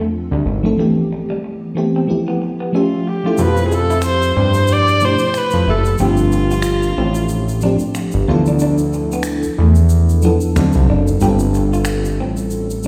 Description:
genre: R&B, neo-soul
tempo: 92 BPM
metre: 4/4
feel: swing 57% on 16ths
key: D dorian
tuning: A4 = 440 Hz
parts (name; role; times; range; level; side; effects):
- electric guitar through a small old amp; second line; 0.0-12.3 s; G3 to G4; -27 LUFS; equal; none
- FM electric piano with soft pad layer; accompaniment; 0.0-12.9 s; B2 to E5; -21 LUFS; equal; chorus, tremolo
- fat analog bass; bass; 0.3-12.9 s; F#1 to G2; -18 LUFS; equal; none
- warm viola; melody; 2.8-7.9 s; F4 to D5; -21 LUFS; equal; none
- egg shaker and finger snaps; percussion; 3.4-12.9 s; none; -34 LUFS; equal; none
room: wet recital hall reverb, RT60 1.7 s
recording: recorded in a church or concert hall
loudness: -16 LUFS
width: mono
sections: 0.0-3.4 A section; 3.4-12.9 B section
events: none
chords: 0.0 Dm7; 0.8 Am9; 2.1 G13; 2.7 A7b13; 3.4 Fmaj9#11; 6.0 G9sus4; 8.3 Dm69; 10.6 D7b9; 11.2 G9sus4

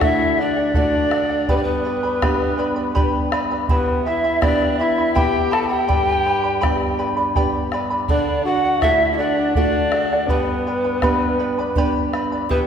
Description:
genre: andean folk, Andean ensemble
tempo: 82 BPM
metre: 3/4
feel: straight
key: unclear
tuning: A4 = 441 Hz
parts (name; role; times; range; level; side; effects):
- reedy pan flute; melody; 0.0-12.6 s; B4 to A5; -21 LUFS; right 1 dB; none
- clear alto saxophone; second line; 0.0-12.7 s; B3 to A4; -24 LUFS; left 3 dB; none
- charango; accompaniment; 0.0-12.7 s; E4 to B5; -24 LUFS; left 1 dB; none
- nylon-string guitar; accompaniment; 0.0-12.7 s; E2 to G4; -25 LUFS; right 3 dB; none
- bombo; percussion; 0.0-12.7 s; none; -24 LUFS; equal; none
room: wet scoring stage reverb, RT60 2.0 s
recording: recorded in a church or concert hall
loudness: -17 LUFS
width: side -8 dB against mid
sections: 0.0-12.7 A section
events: none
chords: 0.0 D; 1.5 G; 3.7 Em; 5.9 G; 8.1 D; 10.3 G

